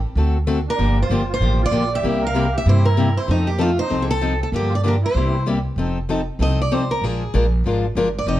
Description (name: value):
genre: acoustic string swing (jazz manouche)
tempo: 192 BPM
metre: 4/4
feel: swing 58% on 8ths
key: unclear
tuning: A4 = 441 Hz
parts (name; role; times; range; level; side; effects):
- upright bass; bass; 0.0-8.4 s; F1 to G2; -20 LUFS; right 1 dB; none
- picked steel-string acoustic guitar; accompaniment; 0.2-8.4 s; C3 to Bb4; -22 LUFS; left 3 dB; none
- picked steel-string acoustic guitar; melody; 0.7-8.4 s; Eb4 to F5; -23 LUFS; right 1 dB; plate reverb
- musette accordion; second line; 0.7-5.4 s; A3 to Bb4; -30 LUFS; right 6 dB; none
room: light reverb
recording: dark, warm production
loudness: -17 LUFS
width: side -14 dB against mid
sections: 0.0-5.8 A section; 5.8-8.4 B section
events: steel-string acoustic guitar solo 5.8-8.4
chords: 0.2 D7; 0.8 Gm7; 2.0 C7; 3.3 F7; 4.5 Gm7; 5.2 C7; 5.8 F7; 7.0 Bb7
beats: 0.17 0.48 | 0.79 1.10 1.42 1.73 | 2.04 2.35 2.66 2.97 | 3.29 3.60 3.91 4.22 | 4.53 4.85 5.16 5.47 | 5.78 6.09 6.41 6.72 | 7.03 7.34 7.65 7.97 | 8.28